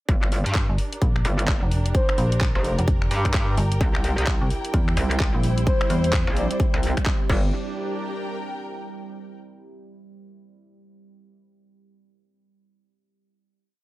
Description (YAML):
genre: bass house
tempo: 129 BPM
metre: 4/4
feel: swing 61% on 16ths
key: G dorian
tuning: A4 = 440 Hz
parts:
  - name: metallic wobble bass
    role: bass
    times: 0.1-7.5 s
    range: F1 to G2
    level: -24 LUFS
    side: equal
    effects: chorus, tube saturation, sidechain pumping
  - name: electronic kick drum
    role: drums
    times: 0.1-7.4 s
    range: none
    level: -22 LUFS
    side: equal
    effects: none
  - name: garage drum kit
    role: drums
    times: 0.1-7.4 s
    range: crash cymbal, finger snaps, handclaps, hi-hat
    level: -30 LUFS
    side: left 1 dB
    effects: none
  - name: warm studio string section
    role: texture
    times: 0.1-9.3 s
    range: D4 to G5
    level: -32 LUFS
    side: equal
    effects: sidechain pumping
  - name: metallic FM bass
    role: bass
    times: 0.7-6.3 s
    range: F1 to E2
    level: -23 LUFS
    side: equal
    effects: overdrive, sidechain pumping
  - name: breathy flute-like synth lead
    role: melody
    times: 1.9-2.7, 5.7-6.6 s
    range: C5 to D5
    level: -29 LUFS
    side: left 1 dB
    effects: chorus, tremolo, cassette tape, dub echo
  - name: deep dark ambient pad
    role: sustained chords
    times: 4.6-7.5 s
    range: G3 to C5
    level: -34 LUFS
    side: right 3 dB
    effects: chorus, built-in reverb, sidechain pumping
room: digital ambience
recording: none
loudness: -20 LUFS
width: side -17 dB against mid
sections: 0.1-7.5 drop; 7.5-9.4 final chord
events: drop 0.1-7.5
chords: 0.1 Gm; 3.8 C; 7.3 Gm